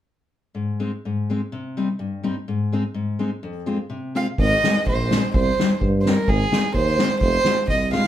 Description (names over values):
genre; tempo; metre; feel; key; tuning
alpine folk, alpine dance band; 126 BPM; 2/4; straight; Ab major; A4 = 440 Hz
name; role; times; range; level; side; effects
fingerpicked steel-string acoustic guitar; accompaniment; 0.5-8.0 s; F2 to F4; -23 LUFS; left 3 dB; none
warm violin; melody; 4.2-8.1 s; Ab4 to F5; -22 LUFS; right 2 dB; none
warm tuba; bass; 4.4-8.0 s; F1 to G2; -23 LUFS; right 1 dB; none
soft-mallet drum kit; drums; 4.4-8.1 s; crash cymbal, kick drum, snare drum; -23 LUFS; right 1 dB; none
room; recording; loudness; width
wet small room reverb, RT60 0.6 s; heard from further back in the room; -19 LUFS; side -11 dB against mid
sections
0.6-4.4 A section; 4.4-8.1 B section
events
drum fill 7.9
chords
0.6 Ab; 1.5 Cm; 2.5 Ab; 3.4 Fm; 4.4 Ab; 5.3 Cm; 6.3 Ab; 7.2 Fm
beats
| 0.55 1.04 | 1.52 1.99 | 2.47 2.94 | 3.42 3.90 | 4.38 4.86 | 5.34 5.80 | 6.27 6.74 | 7.21 7.68